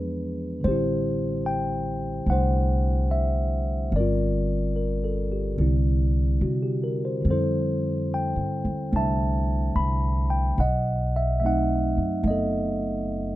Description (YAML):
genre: jazz ballad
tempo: 73 BPM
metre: 4/4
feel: swing 68% on 8ths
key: unclear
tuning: A4 = 440 Hz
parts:
  - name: mellow tine electric piano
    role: accompaniment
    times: 0.0-13.4 s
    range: D3 to B5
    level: -25 LUFS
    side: equal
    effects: none
  - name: upright bass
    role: bass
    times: 0.0-13.4 s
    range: F#1 to C3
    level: -25 LUFS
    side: equal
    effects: none
room: little or no reverb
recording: close, detailed microphones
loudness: -22 LUFS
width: side -15 dB against mid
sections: 0.0-13.4 A section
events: none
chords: 0.0 E7b9; 0.6 Am7; 3.9 Gm7; 5.6 C9; 7.3 Fmaj9; 10.6 B7b9